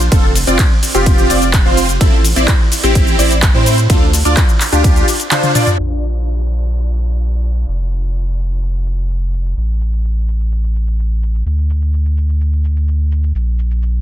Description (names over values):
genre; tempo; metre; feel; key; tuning
EDM, festival progressive house; 127 BPM; 4/4; straight; D minor; A4 = 442 Hz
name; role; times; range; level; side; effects
saturated sub bass; bass; 0.0-14.0 s; F1 to A2; -15 LUFS; equal; sidechain pumping
big-room dance drum kit; drums; 0.0-13.9 s; handclaps, hi-hat, ride cymbal, shaker, toms; -18 LUFS; equal; overdrive, low-pass filter on hats, studio reverb, low-pass filter on perc, low-pass filter on cymbals, low-pass filter on snare, low-pass filter on toms
supersaw chords; riff; 0.1-5.7 s; C4 to D5; -16 LUFS; equal; lush chorus, sidechain pumping, low-pass filter, digital delay
electronic kick drum; drums; 0.1-4.9 s; none; -12 LUFS; equal; studio reverb
room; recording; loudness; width
digital ambience; dense, heavily limited modern master, low-pass filter; -12 LUFS; side -12 dB against mid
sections
0.0-5.8 A section; 5.8-14.0 B section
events
drop 0.0-5.8; drum fill 5.3-5.8; band accent 5.3; filter sweep on drum 5.8-14.0; filter sweep 5.8-14.0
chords
0.1 F5; 2.0 Am; 3.9 Dm; 5.8 N.C.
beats
| 0.12 0.59 1.06 1.54 | 2.01 2.48 2.95 3.43 | 3.90 4.37 4.84 5.32 | 5.79 6.26 6.73 7.21 | 7.68 8.15 8.62 9.10 | 9.57 10.04 10.51 10.98 | 11.46 11.93 12.40 12.88 | 13.35 13.82